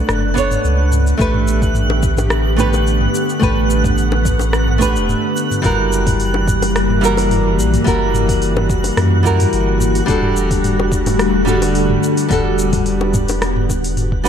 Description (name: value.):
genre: sunset chillout.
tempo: 108 BPM.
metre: 4/4.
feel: straight.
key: unclear.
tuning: A4 = 440 Hz.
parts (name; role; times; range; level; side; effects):
nylon-string guitar; accompaniment; 0.0-14.3 s; G3 to C#5; -19 LUFS; right 1 dB; auto-pan, tape echo, shimmer reverb.
soft string machine; sustained chords; 0.0-14.3 s; D3 to F#5; -20 LUFS; left 1 dB; ensemble chorus, shimmer reverb.
warm sub bass; bass; 0.0-14.3 s; D1 to F#2; -18 LUFS; equal; none.
twinkling granular texture; texture; 0.0-14.3 s; F#6; -27 LUFS; right 2 dB; built-in reverb, shimmer reverb.
smooth R&B drum kit; drums; 0.1-14.3 s; hi-hat, rim click, shaker, toms; -22 LUFS; equal; none.
electronic kick drum; drums; 0.4-14.2 s; none; -19 LUFS; equal; none.
bongos; percussion; 1.9-13.8 s; none; -26 LUFS; left 7 dB; none.
room: light reverb, digital ambience.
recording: none.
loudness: -13 LUFS.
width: side -8 dB against mid.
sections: 0.0-14.3 A section.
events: none.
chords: 0.0 Bm9; 1.2 A9sus4; 5.6 F#7b9; 10.1 Em11.